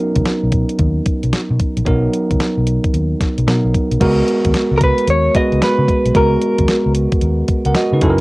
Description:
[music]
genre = R&B, new jack swing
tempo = 112 BPM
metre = 4/4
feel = swing 64% on 16ths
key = unclear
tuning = A4 = 440 Hz
[part]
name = bell-like tine electric piano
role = accompaniment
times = 0.0-8.2 s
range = F#3 to F#5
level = -17 LUFS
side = right 1 dB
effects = cassette tape
[part]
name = vintage muted fingered electric bass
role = bass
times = 0.2-8.2 s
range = F#1 to C#3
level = -17 LUFS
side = equal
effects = none
[part]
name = clean 12-bit digital drum machine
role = drums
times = 0.2-8.2 s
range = crash cymbal, hi-hat, kick drum, snare drum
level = -18 LUFS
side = equal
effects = none
[part]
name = direct-recorded clean electric guitar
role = melody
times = 4.8-6.9 s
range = A#4 to D#5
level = -17 LUFS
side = equal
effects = lush chorus, cassette tape
[sound]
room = light reverb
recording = home recording on cassette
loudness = -13 LUFS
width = side -22 dB against mid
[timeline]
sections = 0.0-4.0 A section; 4.0-8.2 B section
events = none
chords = 0.0 Bmaj7; 4.0 G#m9/C#

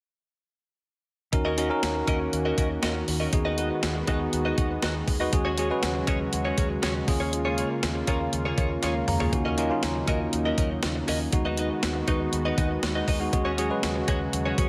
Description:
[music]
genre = 1980s-style pop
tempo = 120 BPM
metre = 4/4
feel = straight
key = Eb minor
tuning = A4 = 439 Hz
[part]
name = bell-like tine electric piano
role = accompaniment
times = 1.3-14.7 s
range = Ab3 to Bb5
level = -31 LUFS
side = equal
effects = none
[part]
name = warm analog pad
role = sustained chords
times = 1.3-14.7 s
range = Db3 to Gb4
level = -35 LUFS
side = equal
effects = chorus
[part]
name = direct-recorded clean electric guitar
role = riff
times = 1.3-14.7 s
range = Bb3 to Eb5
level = -34 LUFS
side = equal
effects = lush chorus, delay
[part]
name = vintage muted fingered electric bass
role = bass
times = 1.3-14.7 s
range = Eb2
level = -34 LUFS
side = equal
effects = none
[part]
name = clean 12-bit digital drum machine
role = drums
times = 1.3-14.7 s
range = hi-hat, kick drum, snare drum, toms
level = -30 LUFS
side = equal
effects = gated reverb
[sound]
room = light reverb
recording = none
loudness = -26 LUFS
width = mono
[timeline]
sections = 1.3-14.7 A section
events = tine electric piano fill 8.3-9.3; drum fill 8.8-9.3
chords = 1.3 Ebm7; 3.3 Abm7/Eb; 5.3 Gbsus2/Eb; 7.1 Bbm7/Eb; 9.3 Ebm7; 11.3 Abm7/Eb; 13.3 Gbsus2/Eb

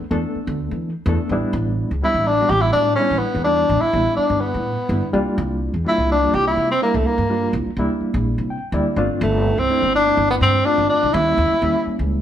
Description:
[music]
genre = electric jazz fusion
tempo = 125 BPM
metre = 4/4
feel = swing 55% on 16ths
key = unclear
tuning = A4 = 440 Hz
[part]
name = reed electric piano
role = accompaniment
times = 0.0-12.2 s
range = G3 to G5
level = -24 LUFS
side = equal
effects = fast tremolo
[part]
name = upright bass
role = bass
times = 0.0-12.2 s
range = G1 to E3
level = -22 LUFS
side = equal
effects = none
[part]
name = breathy tenor saxophone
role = melody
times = 2.0-11.9 s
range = A3 to G4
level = -17 LUFS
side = equal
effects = none
[sound]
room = moderate large studio reverb, RT60 1.0 s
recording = band playing live in one room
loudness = -17 LUFS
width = side -10 dB against mid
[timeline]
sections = 0.0-12.2 A section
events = reed electric piano fill 8.3-9.2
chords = 0.0 E7sus4; 1.3 A9sus4; 5.1 C9sus4; 9.0 G9sus4; 11.1 D#7b9

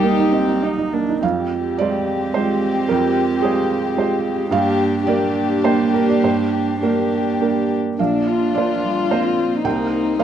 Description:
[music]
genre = neoclassical piano and strings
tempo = 98-112 BPM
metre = 3/4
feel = rubato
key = F dorian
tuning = A4 = 439 Hz
[part]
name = warm chamber violin section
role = melody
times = 0.0-10.2 s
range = D4 to G4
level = -22 LUFS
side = left 6 dB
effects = none
[part]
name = rich cello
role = second line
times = 0.0-10.2 s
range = F3 to C4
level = -24 LUFS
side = right 3 dB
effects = none
[part]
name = felt-muted upright piano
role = accompaniment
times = 0.0-10.2 s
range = Bb1 to G5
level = -20 LUFS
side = right 6 dB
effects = none
[part]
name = warm viola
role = accompaniment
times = 0.0-10.2 s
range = Bb3 to Eb4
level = -24 LUFS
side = right 1 dB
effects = none
[sound]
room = studio reverb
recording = dry, close 1970s-style studio recording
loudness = -16 LUFS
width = side -9 dB against mid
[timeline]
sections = 0.0-1.2 A section; 1.2-10.2 B section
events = none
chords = 0.0 Cm7; 1.2 Fmadd9; 4.5 Gm7; 8.0 Bbadd9; 9.6 Cm7

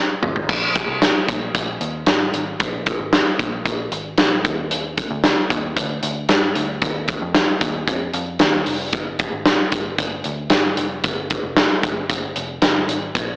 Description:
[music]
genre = jangly indie pop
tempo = 114 BPM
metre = 4/4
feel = straight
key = unclear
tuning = A4 = 440 Hz
[part]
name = vintage muted picked electric bass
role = bass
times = 0.0-13.4 s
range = F1 to G2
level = -29 LUFS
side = equal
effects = none
[part]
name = big rock drum kit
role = drums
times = 0.2-13.3 s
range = crash cymbal, hi-hat, kick drum, snare drum, toms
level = -18 LUFS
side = equal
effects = none
[sound]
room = moderate echo chamber reverb, RT60 2.1 s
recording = blown-out, overdriven recording, overdrive, AM radio sound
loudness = -17 LUFS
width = side -25 dB against mid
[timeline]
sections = 0.5-13.4 A section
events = drum fill 0.0-0.5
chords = none

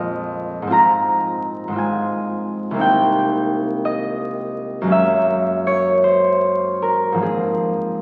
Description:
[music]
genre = classical, solo harp piece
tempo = 50-58 BPM (dotted quarters)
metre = 6/8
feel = rubato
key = unclear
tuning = A4 = 440 Hz
[part]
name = concert harp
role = solo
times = 0.0-8.0 s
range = C2 to Bb5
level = -19 LUFS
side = equal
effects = none
[sound]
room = wet concert hall reverb, RT60 2.4 s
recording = very old 78 rpm record, vinyl crackle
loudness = -19 LUFS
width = mono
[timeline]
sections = 0.0-8.0 A section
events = none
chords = 0.0 Fm7; 0.7 Ab6; 2.8 Cm7; 4.9 Gb9; 7.2 Ab69

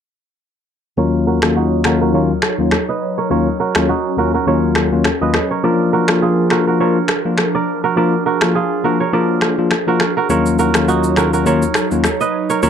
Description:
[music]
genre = afrobeats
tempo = 103 BPM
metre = 4/4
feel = swing 55% on 16ths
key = Eb minor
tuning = A4 = 439 Hz
[part]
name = bell-like tine electric piano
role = accompaniment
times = 1.0-12.7 s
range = Eb2 to F4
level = -16 LUFS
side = left 4 dB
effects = low-pass filter
[part]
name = airy breathy pad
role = sustained chords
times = 1.0-12.7 s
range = F3 to Eb5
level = -22 LUFS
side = right 1 dB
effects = chorus, low-pass filter
[part]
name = kora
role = riff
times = 1.0-12.7 s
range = Eb4 to Eb5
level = -19 LUFS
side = right 7 dB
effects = low-pass filter, analog delay
[part]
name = electronic finger snaps, rim click and shaker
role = drums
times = 1.4-12.7 s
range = none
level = -18 LUFS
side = equal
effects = vintage 12-bit sampler grit
[sound]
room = light reverb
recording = dark, warm production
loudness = -13 LUFS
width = side -8 dB against mid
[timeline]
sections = 1.0-12.7 A section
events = hi-hats muted 1.0-10.3; filter sweep 1.0-12.7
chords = 1.0 Ebm7; 5.6 Bb; 10.3 Ebm7

